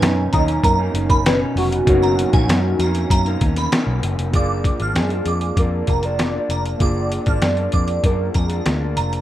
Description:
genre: indie pop, bedroom pop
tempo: 97 BPM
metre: 4/4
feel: straight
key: unclear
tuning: A4 = 440 Hz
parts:
  - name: warm velvety synth lead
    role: melody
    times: 0.0-9.0 s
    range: F#4 to D#5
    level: -23 LUFS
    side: equal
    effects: tremolo, ensemble chorus
  - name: electric guitar through a small old amp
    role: accompaniment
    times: 0.0-9.2 s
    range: F#2 to D4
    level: -27 LUFS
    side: left 3 dB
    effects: wide subtle chorus, vibrato effect
  - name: tine electric piano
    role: accompaniment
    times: 0.0-9.2 s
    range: A#3 to A#5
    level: -30 LUFS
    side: right 4 dB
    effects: medium stereo tremolo, cassette tape
  - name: hollow soft pad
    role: sustained chords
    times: 0.0-4.3 s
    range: B2 to D#4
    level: -27 LUFS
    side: right 3 dB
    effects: chorus
  - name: vintage muted picked electric bass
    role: bass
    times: 0.0-9.2 s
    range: E#1 to F#2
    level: -21 LUFS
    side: equal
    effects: none
  - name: trip hop sampler-style drum kit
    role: drums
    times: 0.0-9.2 s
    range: hi-hat, kick drum, snare drum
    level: -19 LUFS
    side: equal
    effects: none
  - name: glassy synth bell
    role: second line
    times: 0.3-9.1 s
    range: G#5 to E#6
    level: -26 LUFS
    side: right 2 dB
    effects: phaser, ensemble chorus, tape echo
room: digital ambience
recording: rough home demo mix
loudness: -16 LUFS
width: side -13 dB against mid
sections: 0.0-4.3 A section; 4.3-9.2 B section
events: none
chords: 0.0 Bmaj9; 4.3 A#7

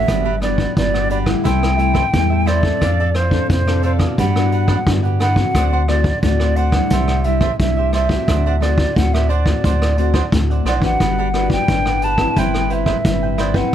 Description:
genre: samba and choro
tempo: 88 BPM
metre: 4/4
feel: straight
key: G major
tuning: A4 = 440 Hz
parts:
  - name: hollow concert flute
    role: melody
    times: 0.0-13.7 s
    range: C5 to A5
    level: -21 LUFS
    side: right 1 dB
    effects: plate reverb
  - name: cavaquinho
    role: accompaniment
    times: 0.0-13.7 s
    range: D4 to G5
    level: -26 LUFS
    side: right 6 dB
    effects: none
  - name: nylon-string guitar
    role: accompaniment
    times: 0.0-13.7 s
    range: G2 to B4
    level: -22 LUFS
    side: left 3 dB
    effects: none
  - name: rubbery square bass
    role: bass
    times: 0.0-13.6 s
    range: G1 to G2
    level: -18 LUFS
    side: equal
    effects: none
  - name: vintage brush drum kit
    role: drums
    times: 0.1-13.7 s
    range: hi-hat, kick drum, rim click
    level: -20 LUFS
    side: equal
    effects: none
room: light reverb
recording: close, detailed microphones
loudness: -14 LUFS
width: side -10 dB against mid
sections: 0.1-13.7 A section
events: none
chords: 0.1 Gmaj7; 1.5 C6; 2.8 F6; 4.2 Gmaj7; 5.5 D7; 6.9 Cadd9; 8.3 D7; 11.0 Gmaj7; 12.4 Cmaj7/G

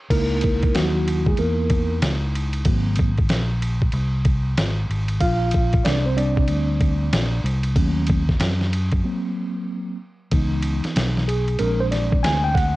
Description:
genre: hip hop, jazz-hop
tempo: 94 BPM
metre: 4/4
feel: swing 65% on 16ths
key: unclear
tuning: A4 = 439 Hz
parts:
  - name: mellow tine electric piano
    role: accompaniment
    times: 0.1-12.8 s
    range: E3 to G#5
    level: -24 LUFS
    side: equal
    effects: medium stereo tremolo, cassette tape
  - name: fingered electric bass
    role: bass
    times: 0.1-12.8 s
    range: G#1 to F#2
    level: -22 LUFS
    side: equal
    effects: none
  - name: dusty soul sampler-style drum kit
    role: drums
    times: 0.1-12.8 s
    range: crash cymbal, hi-hat, kick drum, ride cymbal, snare drum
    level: -22 LUFS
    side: equal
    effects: cassette tape
room: digital ambience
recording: home recording on cassette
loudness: -18 LUFS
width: side -18 dB against mid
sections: 0.1-10.3 A section; 10.3-12.8 B section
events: tine electric piano solo 0.1-10.3, 10.3-12.8; break 9.0-10.3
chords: 0.1 C#m69; 2.7 G#9; 5.2 A#6; 7.8 D#m7b5; 9.0 F#; 10.3 C#m9; 11.6 A#7

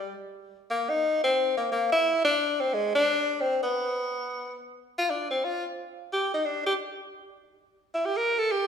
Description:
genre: jazz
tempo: 176 BPM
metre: 3/4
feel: swing 63% on 8ths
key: G minor from 4.7 s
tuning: A4 = 441 Hz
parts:
  - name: clear tenor saxophone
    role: solo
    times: 0.0-8.7 s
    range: G3 to Bb4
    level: -25 LUFS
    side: left 1 dB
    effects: none
room: wet recital hall reverb, RT60 1.8 s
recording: recorded in a church or concert hall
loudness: -24 LUFS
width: side -7 dB against mid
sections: 0.0-4.7 A section; 4.7-8.7 B section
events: tenor saxophone solo 4.7-8.7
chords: none

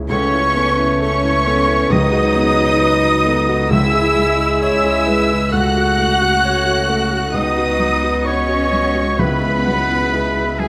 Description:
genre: cinematic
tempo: 66 BPM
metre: 4/4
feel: rubato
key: unclear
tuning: A4 = 441 Hz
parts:
  - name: dark baby grand piano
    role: accompaniment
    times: 0.0-10.7 s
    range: C#2 to C#5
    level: -25 LUFS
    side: equal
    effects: none
  - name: muted studio double bass section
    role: bass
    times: 0.0-10.7 s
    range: C#2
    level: -25 LUFS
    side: equal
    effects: none
  - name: muted studio violin section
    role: melody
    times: 0.1-10.7 s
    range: G#5 to F#6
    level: -26 LUFS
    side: equal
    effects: none
  - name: clear oboe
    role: second line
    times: 0.1-10.7 s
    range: G#4 to F#5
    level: -24 LUFS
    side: equal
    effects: none
  - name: dark clarinet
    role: second line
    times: 0.1-10.7 s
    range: F#4 to F#5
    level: -27 LUFS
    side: equal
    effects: none
  - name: muted studio violin section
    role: second line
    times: 0.1-10.7 s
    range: G#5 to F#6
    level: -30 LUFS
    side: equal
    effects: none
  - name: small flute group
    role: second line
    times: 0.1-10.7 s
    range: G#5 to F#6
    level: -28 LUFS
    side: equal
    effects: none
  - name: muted studio viola section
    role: accompaniment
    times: 0.1-10.7 s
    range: G#4 to F#5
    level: -27 LUFS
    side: equal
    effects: none
  - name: clear French horn section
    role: sustained chords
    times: 0.1-10.7 s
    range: F#3 to B4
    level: -25 LUFS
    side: equal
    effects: none
  - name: muted studio cello section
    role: bass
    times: 0.1-10.7 s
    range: G#3 to F#4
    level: -25 LUFS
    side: equal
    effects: none
  - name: timpani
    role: percussion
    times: 1.9-10.6 s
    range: C#3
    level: -26 LUFS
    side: equal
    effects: none
room: moderate scoring stage reverb, RT60 1.9 s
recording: close, detailed microphones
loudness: -16 LUFS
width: mono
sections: 0.0-10.7 A section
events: none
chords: 0.1 Aadd9/C#; 1.9 B/C#; 3.7 C#m; 5.5 F#m/C#; 7.3 B/C#; 9.2 Eadd9/C#

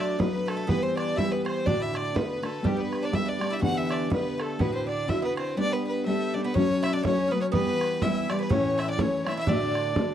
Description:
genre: celtic folk, Celtic polka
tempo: 123 BPM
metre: 2/4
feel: swing 57% on 8ths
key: G major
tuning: A4 = 441 Hz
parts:
  - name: rich fiddle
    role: melody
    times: 0.0-10.1 s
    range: G4 to F#5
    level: -30 LUFS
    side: left 1 dB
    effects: none
  - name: Irish bouzouki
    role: second line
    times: 0.0-10.1 s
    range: G3 to F#4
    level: -35 LUFS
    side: right 7 dB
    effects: none
  - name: clear fiddle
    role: second line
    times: 0.0-10.1 s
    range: G4 to F#5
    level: -37 LUFS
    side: left 6 dB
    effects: none
  - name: fingerpicked steel-string acoustic guitar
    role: accompaniment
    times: 0.0-10.1 s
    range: D2 to G4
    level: -27 LUFS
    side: left 1 dB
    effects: none
  - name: bodhran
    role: percussion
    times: 0.2-10.1 s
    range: none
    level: -30 LUFS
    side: right 2 dB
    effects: none
room: light reverb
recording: dry, close 1970s-style studio recording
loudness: -24 LUFS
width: side -10 dB against mid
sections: 0.0-6.6 A section; 6.6-10.1 B section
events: none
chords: 0.0 D/F#; 0.7 Em; 1.7 D; 2.6 G; 3.6 Em7; 4.6 Dadd9; 5.6 G; 6.6 F#m; 7.5 Em; 8.5 A; 9.5 D

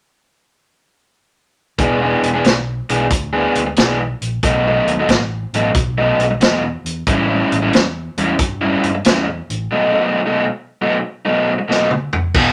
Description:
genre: electric blues shuffle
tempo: 91 BPM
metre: 4/4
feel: swing 68% on 8ths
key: unclear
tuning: A4 = 439 Hz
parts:
  - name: raw garage guitar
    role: riff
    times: 1.8-12.5 s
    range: E2 to G#4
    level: -18 LUFS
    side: equal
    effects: overdrive
  - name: fingered electric bass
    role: bass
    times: 1.8-12.5 s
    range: E1 to G2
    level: -26 LUFS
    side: equal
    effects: none
  - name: vintage drum kit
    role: drums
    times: 1.8-12.5 s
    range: crash cymbal, hi-hat, kick drum, snare drum, toms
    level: -19 LUFS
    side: equal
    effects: none
room: moderate studio ambience, RT60 0.5 s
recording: none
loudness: -17 LUFS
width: mono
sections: 1.8-12.4 A section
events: drum fill 11.7-12.4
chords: 1.8 E7; 4.4 B7; 7.1 A7; 9.7 B7

